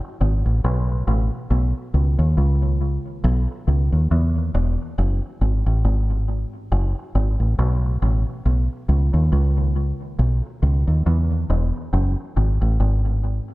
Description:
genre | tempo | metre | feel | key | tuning
reggae | 69 BPM | 4/4 | swing 57% on 16ths | unclear | A4 = 439 Hz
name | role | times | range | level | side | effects
deep dub fingered electric bass | solo | 0.2-13.4 s | E1 to E2 | -18 LUFS | equal | analog delay
room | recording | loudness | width
light reverb | echo-heavy mix | -18 LUFS | side -19 dB against mid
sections
0.0-13.5 A section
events
none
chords
none

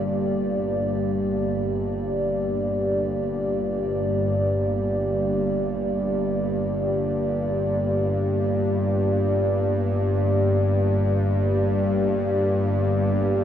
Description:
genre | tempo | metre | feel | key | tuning
dark ambient drone | free time | none | none | G minor | A4 = 439 Hz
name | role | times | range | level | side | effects
dark analog pad | sustained chords | 0.0-13.4 s | Bb3 to D5 | -24 LUFS | equal | chorus
bowed-like drone | drone | 0.0-13.4 s | G1 to G2 | -24 LUFS | left 1 dB | built-in reverb
room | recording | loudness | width
wet huge ambient reverb, RT60 8.0 s | none | -21 LUFS | side -9 dB against mid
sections
0.1-13.4 A section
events
none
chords
0.1 Gm

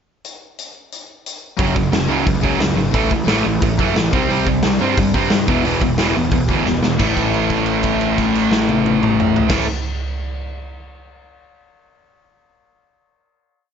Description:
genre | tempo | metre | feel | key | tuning
punk rock | 178 BPM | 4/4 | straight | unclear | A4 = 440 Hz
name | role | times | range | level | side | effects
big rock drum kit | drums | 0.2-9.6 s | crash cymbal, hi-hat, kick drum, snare drum, toms | -20 LUFS | equal | none
distorted electric guitar | riff | 1.6-9.7 s | E2 to C4 | -19 LUFS | right 9 dB | overdrive
overdriven electric guitar | riff | 1.6-9.7 s | E2 to C4 | -20 LUFS | left 9 dB | none
fuzz picked electric bass | bass | 1.6-9.6 s | E1 to G2 | -24 LUFS | equal | overdrive
room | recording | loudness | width
little or no reverb | nothing above 7.6 kHz | -15 LUFS | side -7 dB against mid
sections
0.2-1.6 pickup bar; 1.6-7.0 verse; 7.0-9.7 final chord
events
drum fill 6.7-7.0; held note 7.0-9.5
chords
0.2 N.C.; 1.6 F#5; 2.9 A5; 4.1 C5; 5.5 E5; 7.0 A5

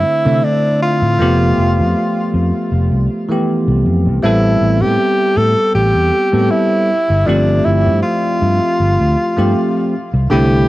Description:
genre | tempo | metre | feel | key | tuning
vaporwave | 79 BPM | 4/4 | swing 53% on 16ths | C major | A4 = 439 Hz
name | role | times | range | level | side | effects
bright tenor saxophone | melody | 0.0-10.7 s | D4 to A4 | -16 LUFS | equal | tape echo
bell-like tine electric piano | accompaniment | 0.0-10.7 s | D3 to E5 | -16 LUFS | equal | wide subtle chorus, tape echo
fingered electric bass | bass | 0.0-10.6 s | F1 to C3 | -15 LUFS | equal | none
room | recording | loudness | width
light reverb, small room ambience | worn, warbling old tape, cassette tape, warbly pitch drift | -12 LUFS | side -17 dB against mid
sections
0.0-10.7 A section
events
none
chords
0.0 C69; 1.2 Fmaj9#11; 4.2 Am9; 6.9 G9sus4; 9.9 C69

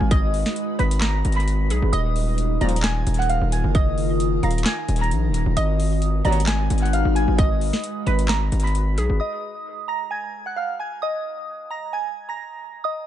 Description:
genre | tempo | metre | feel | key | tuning
hip hop, trap | 132 BPM | 4/4 | half-time | Eb harmonic minor | A4 = 441 Hz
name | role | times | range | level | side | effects
soft synth bell | melody | 0.0-13.1 s | Eb5 to Cb7 | -27 LUFS | right 2 dB | chorus, phaser, dub echo
ethereal airy pad | sustained chords | 0.0-9.2 s | Eb3 to Cb5 | -28 LUFS | left 1 dB | ensemble chorus, built-in reverb, phaser
distorted 808-style bass | bass | 0.0-9.2 s | Eb1 to Cb2 | -21 LUFS | equal | distortion
hollow square pluck | second line | 0.1-9.2 s | Ab4 to F5 | -34 LUFS | right 2 dB | chorus, dub echo
trap drum kit | drums | 0.1-9.1 s | handclaps, hi-hat, kick drum, snare drum | -25 LUFS | equal | overdrive, dub echo
warm brass ensemble | stabs | 2.6-2.8, 6.2-6.4 s | Eb2 to Gb3 | -29 LUFS | left 4 dB | dub echo
room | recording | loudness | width
little or no reverb | echo-heavy mix, nothing above 10.3 kHz | -19 LUFS | side -11 dB against mid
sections
0.0-9.2 A section; 9.2-13.1 B section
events
none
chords
0.0 Abm7; 1.9 Ebsus2; 5.6 Abm7; 9.2 Eb5

